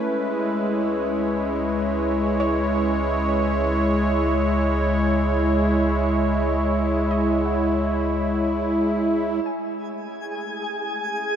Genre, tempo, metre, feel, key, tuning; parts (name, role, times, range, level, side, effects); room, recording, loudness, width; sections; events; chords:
ambient; 51 BPM; 4/4; straight; C# minor; A4 = 440 Hz
warm analog pad; sustained chords; 0.0-11.4 s; G#3 to C#5; -21 LUFS; equal; chorus, shimmer reverb
warm sub bass; bass; 0.1-9.4 s; C#2; -27 LUFS; equal
soft round pluck; arpeggios; 2.4-11.4 s; C#5 to G#5; -36 LUFS; equal
twinkling granular texture; texture; 9.8-11.4 s; G#4 to G#5; -27 LUFS; equal; built-in reverb
wet cathedral reverb, RT60 6.0 s; in a vast, echoing space; -20 LUFS; side -8 dB against mid
0.0-9.5 A section; 9.5-11.4 A section
fade-in on sub bass 0.0-9.5
0.0 C#madd9; 9.5 A